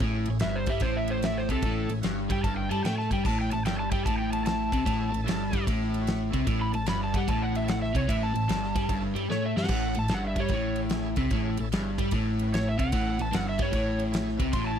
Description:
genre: blues rock power trio and southern rock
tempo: 149 BPM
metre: 4/4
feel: swing 66% on 8ths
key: A major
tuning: A4 = 439 Hz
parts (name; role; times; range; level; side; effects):
- bright tonewheel organ; sustained chords; 0.0-14.8 s; C#4 to B4; -42 LUFS; right 3 dB; slow rotary speaker, overdrive
- overdriven electric guitar; riff; 0.0-14.8 s; G2 to A3; -29 LUFS; left 1 dB; none
- picked electric bass; bass; 0.0-14.8 s; G1 to A2; -32 LUFS; equal; none
- huge arena drum kit; drums; 0.0-14.7 s; crash cymbal, kick drum, ride cymbal, snare drum; -32 LUFS; equal; none
- overdriven slide guitar; melody; 0.4-14.8 s; A4 to C6; -32 LUFS; right 1 dB; none
room: small room ambience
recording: dry, close 1970s-style studio recording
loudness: -25 LUFS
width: side -8 dB against mid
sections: 0.0-14.8 A section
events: electric slide guitar solo 0.0-14.8; drum fill 9.3-9.7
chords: 0.0 A

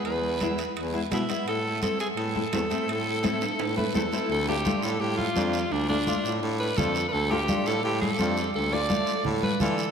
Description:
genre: latin, cumbia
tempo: 170 BPM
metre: 4/4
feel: straight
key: A harmonic minor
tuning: A4 = 440 Hz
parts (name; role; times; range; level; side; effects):
- raspy alto saxophone; melody; 0.0-9.9 s; D4 to D5; -28 LUFS; equal; none
- flamenco guitar; accompaniment; 0.0-9.8 s; G#3 to F4; -30 LUFS; left 2 dB; ensemble chorus
- breathy baritone saxophone; bass; 0.0-9.9 s; D2 to E3; -30 LUFS; right 1 dB; none
- guiro; percussion; 0.0-9.9 s; none; -38 LUFS; right 8 dB; none
- timbales; percussion; 0.1-4.2 s; none; -39 LUFS; right 6 dB; none
- congas; percussion; 0.4-9.8 s; none; -32 LUFS; equal; none
room: wet cathedral reverb, RT60 5.2 s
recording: dreamy mix soaked in reverb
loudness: -24 LUFS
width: side -7 dB against mid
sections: 0.0-4.3 A section; 4.3-9.9 B section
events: drum fill 3.4-4.3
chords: 0.0 E; 1.5 Am; 4.3 Dm

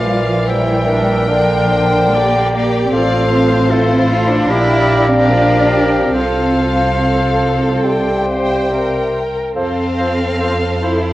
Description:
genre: classical, slow romantic movement for symphony orchestra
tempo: 67-78 BPM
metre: 4/4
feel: rubato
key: F major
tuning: A4 = 442 Hz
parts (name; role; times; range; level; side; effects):
- rich chamber violin section; melody; 0.0-11.1 s; C5 to G5; -23 LUFS; left 2 dB; none
- clear chamber violin section; second line; 0.0-11.1 s; G4 to D5; -27 LUFS; left 4 dB; none
- clear oboe; second line; 0.0-11.0 s; A4 to F5; -24 LUFS; equal; none
- mellow hollow silver concert flute; second line; 0.0-10.9 s; D5 to G5; -24 LUFS; left 1 dB; none
- warm clarinet; second line; 0.0-11.0 s; F4 to C5; -23 LUFS; left 1 dB; none
- rich chamber viola section; accompaniment; 0.0-11.1 s; D4 to C5; -23 LUFS; right 1 dB; none
- warm bassoon; accompaniment; 0.0-11.0 s; D3 to A3; -21 LUFS; right 1 dB; none
- dark French horn section; sustained chords; 0.0-9.9 s; G4 to F5; -22 LUFS; left 2 dB; none
- rich chamber cello section; bass; 0.0-11.1 s; F3 to F4; -19 LUFS; right 1 dB; none
- rich studio double bass section; bass; 0.0-11.1 s; A1 to F2; -19 LUFS; right 1 dB; none
room: moderate scoring stage reverb, RT60 1.5 s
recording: worn, warbling old tape, cassette tape, warbly pitch drift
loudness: -12 LUFS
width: side -16 dB against mid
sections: 0.0-11.1 A section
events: none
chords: 0.0 Bb; 2.9 F/A; 4.5 Gm7/Bb; 6.1 F/C; 7.9 C; 9.6 F

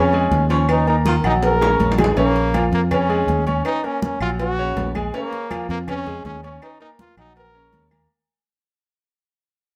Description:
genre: latin, salsa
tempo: 162 BPM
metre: 4/4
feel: straight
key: Bb minor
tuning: A4 = 440 Hz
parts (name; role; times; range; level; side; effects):
- brilliant trombone; melody; 0.0-7.9 s; Bb3 to Bb4; -25 LUFS; equal; none
- warm baritone saxophone; second line; 0.0-1.9 s; Db3 to F3; -27 LUFS; equal; none
- clear concert grand piano; accompaniment; 0.0-8.1 s; Db3 to Db6; -26 LUFS; equal; none
- fingered electric bass; bass; 0.0-8.1 s; Bb1 to F2; -24 LUFS; equal; none
- agogo bells and timbales; percussion; 0.1-8.1 s; none; -31 LUFS; equal; none
- congas; percussion; 0.1-8.1 s; none; -30 LUFS; equal; none
- cowbell and bongos; percussion; 0.3-7.9 s; none; -30 LUFS; equal; none
- claves; percussion; 0.7-8.1 s; none; -40 LUFS; equal; none
room: moderate studio reverb, RT60 0.7 s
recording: none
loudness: -19 LUFS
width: mono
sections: 0.0-2.2 A section; 2.2-8.1 B section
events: drum fill 1.4-2.2; fade-out 2.2-8.1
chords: 0.0 Bbm7 (rootless); 0.7 Ebm7; 2.2 Bbm7; 3.7 Gbadd9/Bb; 5.1 Bbm7; 6.6 Ebm7

